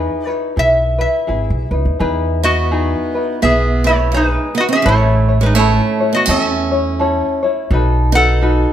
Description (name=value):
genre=Hawaiian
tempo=84 BPM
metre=4/4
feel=swing 60% on 8ths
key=E major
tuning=A4 = 437 Hz
part: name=metal-body resonator slide guitar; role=melody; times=0.0-8.7 s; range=D#4 to F#5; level=-17 LUFS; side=equal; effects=none
part: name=tenor ukulele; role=accompaniment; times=0.0-8.7 s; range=C#4 to C#5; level=-19 LUFS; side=left 3 dB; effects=none
part: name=upright bass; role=bass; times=0.0-8.6 s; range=G#1 to E2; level=-16 LUFS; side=equal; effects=none
part: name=picked steel-string acoustic guitar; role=second line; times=2.4-8.7 s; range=G#3 to D#4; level=-20 LUFS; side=right 6 dB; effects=none
room=moderate recital hall reverb, RT60 1.4 s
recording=none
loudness=-13 LUFS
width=side -10 dB against mid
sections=0.0-2.0 A section; 2.0-8.7 A section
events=none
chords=0.0 Emaj7; 4.9 A; 7.7 B7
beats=0.57 1.29 | 2.00 2.71 3.43 4.14 | 4.85 5.57 6.28 6.99 | 7.71 8.42